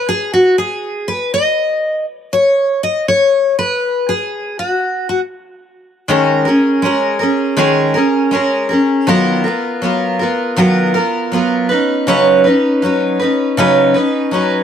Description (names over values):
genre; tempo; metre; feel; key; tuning
indie pop; 80 BPM; 4/4; straight; unclear; A4 = 437 Hz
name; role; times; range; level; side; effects
picked steel-string acoustic guitar; solo; 0.0-14.6 s; C#3 to D#5; -12 LUFS; equal; wide subtle chorus, warbly pitch drift
room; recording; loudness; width
light reverb, small room ambience; none; -12 LUFS; side -8 dB against mid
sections
0.0-6.1 A section; 6.1-14.6 B section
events
steel-string acoustic guitar solo 0.0-6.1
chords
0.0 N.C.; 6.1 D#7sus4; 9.1 Bmaj7#11/D#; 11.7 C#9sus4